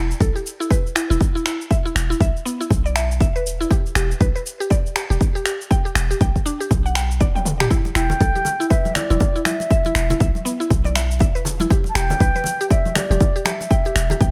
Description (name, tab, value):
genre	afro house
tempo	120 BPM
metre	4/4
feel	swing 60% on 16ths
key	E minor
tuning	A4 = 440 Hz
part	mallet-like synth pluck	arpeggios	0.0-14.3 s	B3 to G5	-28 LUFS	equal	chorus, sidechain pumping, tape echo
part	warm 808-style bass	bass	0.0-14.3 s	E1 to B1	-24 LUFS	equal	sidechain pumping
part	house drum kit	drums	0.1-14.3 s	cabasa, finger snaps, toms	-27 LUFS	equal	none
part	electronic kick drum	drums	0.2-14.3 s	none	-20 LUFS	equal	none
part	congas	percussion	7.8-14.2 s	none	-30 LUFS	equal	none
part	breathy mellow bansuri	melody	8.0-14.3 s	D5 to A5	-26 LUFS	equal	tape echo
room	digital ambience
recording	none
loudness	-20 LUFS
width	mono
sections	0.0-14.3 A section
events	drum fill 7.3-7.7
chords	0.0 E5; 3.7 G/E; 7.7 E5; 11.7 G/E